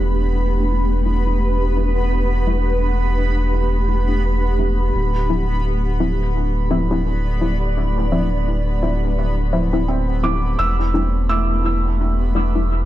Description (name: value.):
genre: ambient.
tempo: 85 BPM.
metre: 4/4.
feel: swing 58% on 16ths.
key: unclear.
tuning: A4 = 439 Hz.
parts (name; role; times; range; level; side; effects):
granular cloud pad; sustained chords; 0.0-12.9 s; A3 to D5; -25 LUFS; equal; built-in reverb.
warm sub bass; bass; 0.0-12.9 s; D1 to E1; -19 LUFS; equal; none.
bubbling stepped-filter texture; texture; 0.0-12.9 s; B3 to B5; -28 LUFS; equal; chorus, built-in reverb.
filtered dub chord stab; stabs; 0.4-12.7 s; F3 to E4; -25 LUFS; left 2 dB; chorus, dub echo.
felt-muted upright piano; arpeggios; 9.9-12.9 s; C4 to E6; -24 LUFS; right 3 dB; dub echo.
room: digital ambience.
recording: echo-heavy mix.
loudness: -17 LUFS.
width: side -14 dB against mid.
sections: 0.0-12.9 A section.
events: filter sweep on ambient pad 0.0-12.9; filter sweep on synth stab 0.0-12.9.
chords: 0.0 Em7; 4.9 Dm9; 10.6 Em7.